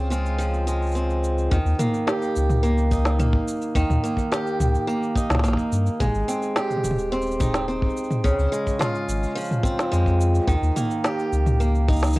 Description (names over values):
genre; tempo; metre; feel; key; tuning
folktronica; 107 BPM; 4/4; straight; Eb mixolydian; A4 = 441 Hz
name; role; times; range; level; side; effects
picked swing-style acoustic guitar; arpeggios; 0.0-12.2 s; Db3 to G4; -24 LUFS; right 1 dB; tape echo
warm sub bass; bass; 0.0-12.2 s; Eb1 to G2; -22 LUFS; equal; transformer saturation
organic electronic drum kit; drums; 0.1-12.2 s; cabasa, snare drum, toms; -27 LUFS; equal; overdrive, cassette tape
kick drum; drums; 1.5-12.0 s; none; -24 LUFS; equal; cassette tape
room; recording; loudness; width
light reverb, small room ambience; home recording on cassette; -20 LUFS; side -20 dB against mid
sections
0.0-1.5 A section; 1.5-12.2 B section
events
filter sweep on steel-string acoustic guitar 0.0-1.5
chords
0.0 Dbmaj7; 1.5 Eb; 6.0 Abmaj7; 8.2 Dbmaj7; 10.5 Eb